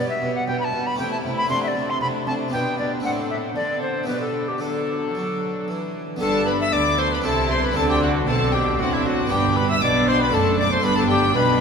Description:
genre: classical, baroque-style concerto movement with solo episodes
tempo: 116 BPM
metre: 3/4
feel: straight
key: G major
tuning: A4 = 440 Hz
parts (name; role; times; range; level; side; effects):
- rich chamber violin section; melody; 0.0-11.6 s; F#4 to E6; -26 LUFS; left 4 dB; none
- tenor recorder; melody; 0.0-11.6 s; E4 to C6; -24 LUFS; left 1 dB; none
- rich chamber violin section; second line; 0.0-11.6 s; B3 to E4; -28 LUFS; left 3 dB; none
- harpsichord; accompaniment; 0.0-11.6 s; D2 to A4; -29 LUFS; right 1 dB; none
- warm chamber viola section; accompaniment; 0.0-11.6 s; F#3 to C4; -30 LUFS; right 2 dB; none
- rich chamber cello section; bass; 0.0-11.6 s; D2 to F#3; -28 LUFS; right 4 dB; none
- rich chamber double bass section; bass; 6.2-11.6 s; F#1 to D2; -27 LUFS; right 3 dB; none
room: wet cathedral reverb, RT60 6.0 s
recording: recorded in a church or concert hall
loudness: -19 LUFS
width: side -6 dB against mid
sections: 0.0-6.2 A section; 6.2-11.6 B section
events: none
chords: 0.0 G/B; 1.0 Am7/C; 1.5 D7/C; 2.5 G/B; 3.0 D5/A; 4.1 G/B; 4.6 D; 6.2 G; 7.2 Am/C; 7.8 D5; 9.3 G; 10.3 D/F#; 10.8 G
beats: 0.47 0.98 | 1.49 2.01 2.52 | 3.04 3.56 4.08 | 4.61 5.15 5.68 | 6.21 6.73 7.25 | 7.76 8.28 8.79 | 9.31 9.82 10.33 | 10.84 11.35

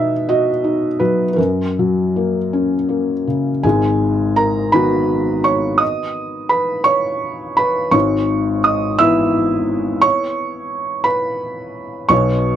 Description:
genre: neoclassical minimalist piano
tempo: 52-58 BPM (dotted quarters)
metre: 6/8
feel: rubato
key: G# minor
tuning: A4 = 440 Hz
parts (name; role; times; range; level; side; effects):
- felt-muted upright piano; solo; 0.0-12.6 s; G#1 to E6; -15 LUFS; equal; none
room: little or no reverb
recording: dry, close 1970s-style studio recording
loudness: -15 LUFS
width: side -10 dB against mid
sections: 0.0-3.6 A section; 3.6-12.6 B section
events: none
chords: 0.0 B; 1.4 F#; 3.6 G#m7; 7.9 E/G#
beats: 0.27 | 1.37 2.51 | 3.63 4.73 | 5.82 6.88 | 7.94 9.00 | 10.05 11.08 | 12.11

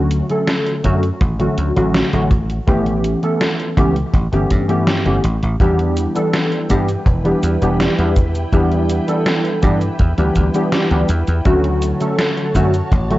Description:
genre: vaporwave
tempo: 82 BPM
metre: 4/4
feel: straight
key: E dorian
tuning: A4 = 440 Hz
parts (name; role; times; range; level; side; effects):
- warbly lo-fi synth keys; accompaniment; 0.0-13.2 s; D3 to A4; -17 LUFS; equal; ensemble chorus, vintage 12-bit sampler grit, analog delay
- dry thumbed slap bass; bass; 0.0-13.2 s; E1 to G2; -18 LUFS; equal; none
- gated 80s digital drum machine; drums; 0.1-13.2 s; cabasa, hi-hat, snare drum; -21 LUFS; equal; gated reverb, gated reverb snare
- kick drum; drums; 0.8-13.1 s; none; -18 LUFS; equal; none
- soft string machine; sustained chords; 5.6-13.2 s; E4 to A5; -28 LUFS; equal; ensemble chorus
room: light reverb, digital ambience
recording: worn, warbling old tape, cassette tape, warbly pitch drift, nothing above 7.7 kHz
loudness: -14 LUFS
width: side -16 dB against mid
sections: 0.0-13.2 A section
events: none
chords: 0.0 Dmaj7; 2.3 A9; 5.6 Em7; 11.5 Dmaj7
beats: 0.48 1.21 1.95 | 2.68 3.41 4.14 4.87 | 5.60 6.33 7.07 7.80 | 8.53 9.26 9.99 10.72 | 11.46 12.19 12.92

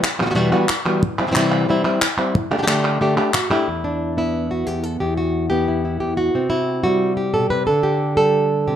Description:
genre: flamenco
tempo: 180 BPM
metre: 4/4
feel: straight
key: E minor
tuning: A4 = 436 Hz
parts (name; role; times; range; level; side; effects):
- flamenco guitar; melody; 0.0-8.8 s; E2 to B4; -17 LUFS; equal; plate reverb
- palmas hand claps; percussion; 0.0-3.7 s; none; -22 LUFS; equal; none
room: moderate studio reverb, RT60 0.7 s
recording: none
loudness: -17 LUFS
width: side -10 dB against mid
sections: 0.0-3.7 A section; 3.7-8.8 B section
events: none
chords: 0.0 Emadd9; 1.0 C; 2.4 Dsus4; 3.7 Emadd9; 6.3 C; 7.7 Dsus4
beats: 0.04 0.36 0.70 | 1.03 1.36 1.69 2.02 | 2.35 2.68 3.01 3.34 | 3.68 4.01 4.34 4.67 | 5.01 5.34 5.67 6.01 | 6.34 6.67 7.01 7.34 | 7.68 8.01 8.34 8.68

